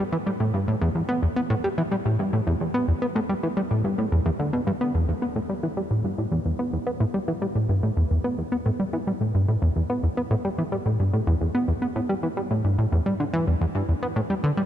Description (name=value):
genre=ambient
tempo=109 BPM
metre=4/4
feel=straight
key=E minor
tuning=A4 = 444 Hz
part: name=plucky analog bass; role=solo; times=0.0-14.6 s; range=E2 to B3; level=-22 LUFS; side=equal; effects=tape echo
room=moderate huge ambient reverb, RT60 7.9 s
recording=none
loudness=-22 LUFS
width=side -11 dB against mid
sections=0.0-14.7 A section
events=none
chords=none